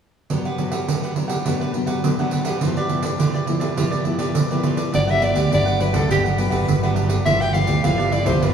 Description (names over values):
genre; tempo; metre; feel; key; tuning
samba and choro; 103 BPM; 4/4; straight; G major; A4 = 442 Hz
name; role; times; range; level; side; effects
cavaquinho; accompaniment; 0.3-8.5 s; D4 to F#5; -27 LUFS; right 2 dB; none
nylon-string guitar; accompaniment; 0.3-8.5 s; G2 to E4; -25 LUFS; left 2 dB; none
pandeiro; percussion; 0.3-8.5 s; none; -23 LUFS; right 4 dB; none
growling soprano saxophone; melody; 4.9-8.5 s; G4 to G5; -21 LUFS; left 1 dB; none
fingered electric bass; bass; 4.9-8.5 s; G1 to D2; -22 LUFS; equal; none
room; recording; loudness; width
wet cathedral reverb, RT60 4.8 s; recorded in a church or concert hall, studio ambience; -18 LUFS; side -7 dB against mid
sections
0.3-4.9 A section; 4.9-8.5 B section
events
none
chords
0.3 Gmaj7; 2.6 G6; 4.9 Gmaj7; 7.3 G6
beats
| 0.30 0.88 1.46 2.04 | 2.62 3.20 3.78 4.36 | 4.94 5.52 6.10 6.68 | 7.26 7.84 8.42